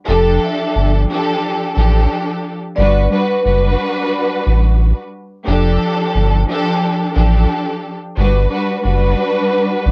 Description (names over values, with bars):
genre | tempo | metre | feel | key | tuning
hip hop, boom-bap hip-hop | 89 BPM | 4/4 | swing 55% on 16ths | unclear | A4 = 440 Hz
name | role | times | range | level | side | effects
vibraphone with soft mallets | melody | 0.1-3.6 s | A4 to E5 | -20 LUFS | equal | high-pass filter, low-pass filter, cassette tape
warm studio string section | accompaniment | 0.1-9.9 s | F3 to B4 | -19 LUFS | equal | cassette tape, high-pass filter, low-pass filter
sub bass with octave | bass | 0.1-9.9 s | F1 to A1 | -16 LUFS | equal | none
room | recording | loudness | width
light reverb | home recording on cassette | -16 LUFS | mono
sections
0.0-9.9 A section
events
none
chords
0.1 F69; 2.8 Gmaj7; 5.5 F69; 8.2 Gmaj7